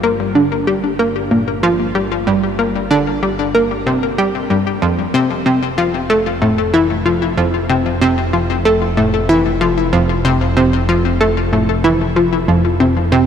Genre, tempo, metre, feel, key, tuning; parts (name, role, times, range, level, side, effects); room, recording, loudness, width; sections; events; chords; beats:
ambient, sequencer-driven space music; 94 BPM; 4/4; straight; A4 = 437 Hz
analog pluck; riff; 0.0-13.3 s; F2 to Bb3; -13 LUFS; equal; chorus, ping-pong delay, shimmer reverb
fat analog bass; bass; 0.0-13.3 s; F1 to G1; -21 LUFS; equal
wet huge ambient reverb, RT60 8.3 s; -13 LUFS; side -8 dB against mid
0.0-13.3 A section
fade-in on analog synth bass 0.0-13.3
0.0 Gm; 4.8 F5
0.35 0.99 1.63 | 2.27 2.91 3.54 4.18 | 4.82 5.46 6.10 6.74 | 7.38 8.01 8.65 9.29 | 9.93 10.57 11.21 11.84 | 12.48 13.12